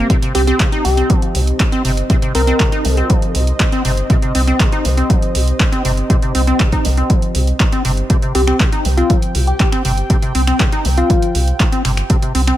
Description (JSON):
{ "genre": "acid house", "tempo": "120 BPM", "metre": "4/4", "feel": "straight", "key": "C minor", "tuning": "A4 = 437 Hz", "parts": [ { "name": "dark analog pad", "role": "sustained chords", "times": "0.0-12.6 s", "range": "C4 to G5", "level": "-25 LUFS", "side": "right 2 dB", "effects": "chorus, sidechain pumping" }, { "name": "liquid acid bass", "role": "riff", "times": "0.0-12.6 s", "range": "Bb2 to Eb4", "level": "-20 LUFS", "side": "equal", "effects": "chorus, tube saturation, sidechain pumping, digital delay" }, { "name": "round analog bass", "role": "bass", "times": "0.0-12.5 s", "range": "G1 to C2", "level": "-16 LUFS", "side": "equal", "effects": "tube saturation, sidechain pumping" }, { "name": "electronic kick drum", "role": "drums", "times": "0.1-12.2 s", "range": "none", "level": "-15 LUFS", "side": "equal", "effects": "none" }, { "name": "punchy analog drum machine", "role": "drums", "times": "0.1-12.6 s", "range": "finger snaps, handclaps, hi-hat", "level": "-22 LUFS", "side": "right 1 dB", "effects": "none" }, { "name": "soft struck synth lead", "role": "melody", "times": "0.3-3.0, 8.3-11.7 s", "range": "F4 to Bb4", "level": "-21 LUFS", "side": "left 2 dB", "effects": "chorus, digital delay" } ], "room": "little or no reverb", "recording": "none", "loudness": "-12 LUFS", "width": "side -13 dB against mid", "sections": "0.0-12.6 A section", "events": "none", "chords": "0.0 Cm", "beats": "| 0.10 0.60 1.10 1.60 | 2.10 2.60 3.10 3.60 | 4.10 4.60 5.10 5.60 | 6.10 6.60 7.10 7.60 | 8.10 8.60 9.10 9.60 | 10.10 10.60 11.10 11.60 | 12.10" }